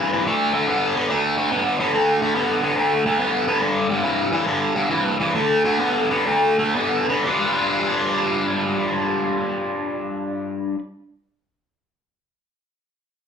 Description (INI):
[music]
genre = blues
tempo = 114-143 BPM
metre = 4/4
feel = swing 67% on 8ths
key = G mixolydian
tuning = A4 = 440 Hz
[part]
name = overdriven electric guitar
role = solo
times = 0.0-10.8 s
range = G2 to B4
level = -18 LUFS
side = equal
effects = phaser
[sound]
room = moderate large studio reverb, RT60 0.8 s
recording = band playing live in one room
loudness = -18 LUFS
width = side -7 dB against mid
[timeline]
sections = 0.0-7.3 A section; 7.3-11.5 B section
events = slowing down 3.6-7.3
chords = 0.3 D5; 3.6 G5; 5.3 D5; 7.3 G7